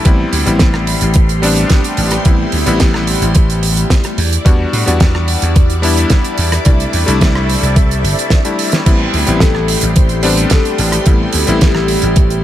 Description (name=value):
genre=nu-disco, nu disco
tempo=109 BPM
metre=4/4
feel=straight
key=A minor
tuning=A4 = 439 Hz
part: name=bright electric grand piano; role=accompaniment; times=0.0-12.4 s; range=G3 to F#4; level=-18 LUFS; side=left 3 dB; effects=tape echo
part: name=string machine, full ensemble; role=sustained chords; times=0.0-12.4 s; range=A3 to C6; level=-21 LUFS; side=equal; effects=phaser, ensemble chorus, sidechain pumping
part: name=vintage slap bass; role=bass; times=0.1-12.4 s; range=G1 to A2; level=-15 LUFS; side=equal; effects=sidechain pumping
part: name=damped 70s drum kit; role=drums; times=0.1-12.4 s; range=crash cymbal, hi-hat, rim click, snare drum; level=-18 LUFS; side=right 3 dB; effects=none
part: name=electronic kick drum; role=drums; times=0.1-12.3 s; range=none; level=-10 LUFS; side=equal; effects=overdrive
part: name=soft octave-layered synth lead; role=melody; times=9.4-12.4 s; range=G4 to C5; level=-20 LUFS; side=left 3 dB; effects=chorus, tape echo
room=studio ambience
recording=none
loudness=-10 LUFS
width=side -12 dB against mid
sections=0.0-12.4 A section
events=drum fill 8.3-8.9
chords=0.1 Am7; 4.2 Em7; 6.7 C69; 8.9 Am7